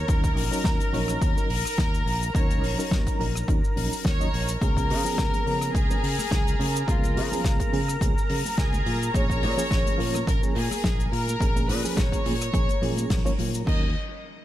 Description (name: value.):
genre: nu-disco, nu disco.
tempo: 106 BPM.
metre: 4/4.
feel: swing 54% on 16ths.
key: Eb minor.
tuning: A4 = 437 Hz.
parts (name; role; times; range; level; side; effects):
warm studio violin section; melody; 0.0-13.9 s; F4 to Eb5; -32 LUFS; left 1 dB; ping-pong delay.
lush unison pad; sustained chords; 0.0-13.7 s; Bb4 to Bb5; -33 LUFS; right 1 dB; chorus, sidechain pumping.
fingered electric bass; bass; 0.0-13.9 s; Bb1 to Db3; -29 LUFS; equal; none.
reed electric piano; accompaniment; 0.1-13.9 s; F3 to Eb5; -32 LUFS; right 2 dB; fast tremolo, sidechain pumping, ping-pong delay.
damped 70s drum kit; drums; 0.1-13.8 s; cabasa, crash cymbal, hi-hat, rim click, snare drum; -32 LUFS; left 3 dB; none.
electronic kick drum; drums; 0.1-13.8 s; none; -26 LUFS; equal; none.
congas; percussion; 4.6-13.5 s; none; -37 LUFS; left 2 dB; none.
room: light reverb, studio reverb.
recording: none.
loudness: -22 LUFS.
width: side -13 dB against mid.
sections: 0.0-13.7 A section.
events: drop 0.0-13.7; band accent 13.1.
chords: 0.0 Ebm7; 4.6 Db7; 8.9 Bbm7; 13.7 Ebm7.